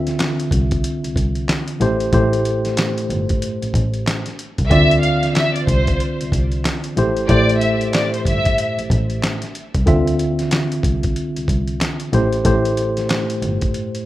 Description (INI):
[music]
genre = hip hop, boom-bap hip-hop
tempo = 93 BPM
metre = 4/4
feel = swing 62% on 16ths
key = D minor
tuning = A4 = 440 Hz
[part]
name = tine electric piano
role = accompaniment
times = 0.0-14.1 s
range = A2 to E5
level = -20 LUFS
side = equal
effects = overdrive, fast stereo tremolo, cassette tape, high-pass filter, low-pass filter
[part]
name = rich double bass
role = bass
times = 0.0-13.7 s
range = G1 to D2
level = -21 LUFS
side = equal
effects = none
[part]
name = dusty soul sampler-style drum kit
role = drums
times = 0.1-14.1 s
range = handclaps, hi-hat, kick drum, snare drum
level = -21 LUFS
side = equal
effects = none
[part]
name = clear studio violin section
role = melody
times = 4.7-8.8 s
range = C5 to F5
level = -20 LUFS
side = equal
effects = high-pass filter, low-pass filter, tape echo
[sound]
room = light reverb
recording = rough home demo mix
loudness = -16 LUFS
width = side -15 dB against mid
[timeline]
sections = 0.0-14.1 A section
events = none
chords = 0.0 Dm9; 1.8 Am7; 4.7 Dm7; 7.0 Am7; 9.9 Dm9; 12.1 Am7